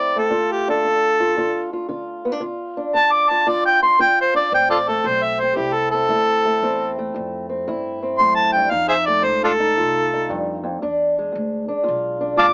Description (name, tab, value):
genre	acoustic country blues, solo or duo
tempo	114 BPM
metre	4/4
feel	swing 68% on 8ths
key	A minor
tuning	A4 = 441 Hz
part	mellow harmonica	melody	0.0-12.5 s	D4 to D6	-18 LUFS	equal	none
part	fingerpicked old ladder-braced acoustic guitar	accompaniment	0.0-12.5 s	E2 to F4	-26 LUFS	equal	none
part	upright bass	bass	4.5-12.5 s	G#1 to G2	-37 LUFS	equal	none
room	moderate booth ambience, RT60 0.3 s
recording	AM radio sound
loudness	-19 LUFS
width	mono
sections	0.0-12.5 A section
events	harmonica solo 0.0-12.5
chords	0.3 Dm; 4.5 Am; 8.7 F7; 10.8 E7b9